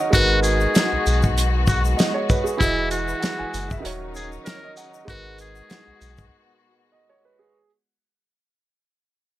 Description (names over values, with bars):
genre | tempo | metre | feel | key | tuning
hip hop, boom-bap hip-hop | 97 BPM | 4/4 | swing 54% on 16ths | G# minor | A4 = 440 Hz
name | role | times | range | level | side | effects
warm upright piano | accompaniment | 0.0-7.7 s | D#3 to G#5 | -26 LUFS | right 3 dB | cassette tape, high-pass filter, low-pass filter
clear studio string section | sustained chords | 0.0-7.5 s | B2 to F#4 | -30 LUFS | left 4 dB | high-pass filter, low-pass filter
trumpet with metal mute | melody | 0.1-6.3 s | E4 to A#4 | -24 LUFS | left 1 dB | high-pass filter, low-pass filter, ping-pong delay
soft dub sub bass | bass | 0.1-6.3 s | D#1 to B1 | -23 LUFS | equal | none
warm soul drum kit | drums | 0.1-6.3 s | hi-hat, kick drum, shaker, snare drum | -22 LUFS | equal | none
tube shaker | percussion | 0.1-6.3 s | none | -38 LUFS | left 8 dB | none
room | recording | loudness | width
little or no reverb | none | -18 LUFS | side -15 dB against mid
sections
0.0-7.6 A section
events
fade-out 0.0-7.6; break 6.3-7.6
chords
0.1 G#m7; 2.6 Emaj7; 3.8 D#m7; 5.1 G#m7